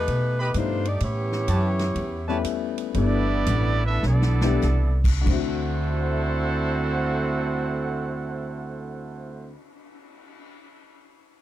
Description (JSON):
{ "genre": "jazz, big band swing", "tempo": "90-129 BPM", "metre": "4/4", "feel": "swing 66% on 8ths", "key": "D mixolydian", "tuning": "A4 = 440 Hz", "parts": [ { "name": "clear saxophone section", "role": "melody", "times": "0.0-2.4 s", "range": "A3 to D5", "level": "-28 LUFS", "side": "left 1 dB", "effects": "none" }, { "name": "upright bass", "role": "bass", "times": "0.0-9.5 s", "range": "G1 to B2", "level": "-24 LUFS", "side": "equal", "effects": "none" }, { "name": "swinging big-band drum kit", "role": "drums", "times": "0.1-10.4 s", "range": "crash cymbal, cymbal swell, hi-hat, kick drum, ride cymbal, snare drum", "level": "-29 LUFS", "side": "equal", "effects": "none" }, { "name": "mellow trumpet section", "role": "stabs", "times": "0.4-2.4 s", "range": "G4 to B5", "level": "-32 LUFS", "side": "right 2 dB", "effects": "none" }, { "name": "warm upright piano", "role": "accompaniment", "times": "0.6-10.9 s", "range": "D2 to C7", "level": "-29 LUFS", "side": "left 10 dB", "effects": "none" }, { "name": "clear trombone section", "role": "second line", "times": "1.0-9.6 s", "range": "D3 to G4", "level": "-29 LUFS", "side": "right 3 dB", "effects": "none" }, { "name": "clear trumpet section", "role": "melody", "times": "3.0-9.6 s", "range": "B3 to F#5", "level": "-30 LUFS", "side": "right 3 dB", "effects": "none" } ], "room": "little or no reverb", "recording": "dry, close 1970s-style studio recording", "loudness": "-21 LUFS", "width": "side -13 dB against mid", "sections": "0.0-3.0 A section; 3.0-5.3 B section; 5.3-10.6 C section", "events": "slowing down 1.0-5.3; drum fill 4.0-4.6", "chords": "0.1 B7alt; 1.0 A9; 3.0 G69; 5.3 D9", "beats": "0.09 0.55 | 1.02 1.49 1.96 2.45 | 2.95 3.48 4.04 4.63 | 5.27 5.93 6.59 7.26 | 7.92 8.58 9.24 9.91" }